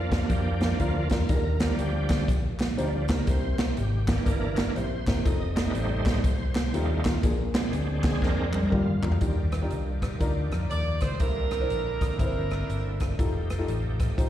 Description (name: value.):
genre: uptempo gospel.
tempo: 121 BPM.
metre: 4/4.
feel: swing 62% on 8ths.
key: Eb major.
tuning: A4 = 440 Hz.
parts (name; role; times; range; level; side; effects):
warm upright piano; accompaniment; 0.0-14.3 s; Bb2 to C5; -34 LUFS; left 3 dB; plate reverb, slapback echo.
bright tonewheel organ; sustained chords; 0.0-14.3 s; D3 to Eb5; -33 LUFS; right 2 dB; slow rotary speaker, overdrive, chorus vibrato, plate reverb.
fingered electric bass; bass; 0.0-14.3 s; F1 to G2; -28 LUFS; equal; none.
swinging big-band drum kit; drums; 0.1-14.3 s; hi-hat, kick drum, rim click, snare drum, toms; -27 LUFS; equal; none.
group handclap; percussion; 1.6-9.1 s; none; -42 LUFS; left 2 dB; none.
edgy saxophone section; melody; 10.7-13.2 s; D4 to D5; -31 LUFS; right 4 dB; plate reverb, slapback echo.
room: light reverb.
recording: live gig heard through the venue's PA, recital hall reverb.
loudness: -24 LUFS.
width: side -12 dB against mid.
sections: 0.0-9.2 A section; 9.2-14.3 B section.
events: tonewheel organ solo 0.0-9.2; drum fill 8.2-9.2.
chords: 0.0 Bb; 1.3 Ebmaj7; 3.3 C7; 5.3 F7; 7.2 Bb7; 9.2 Ebmaj9; 11.2 C9; 13.2 F9.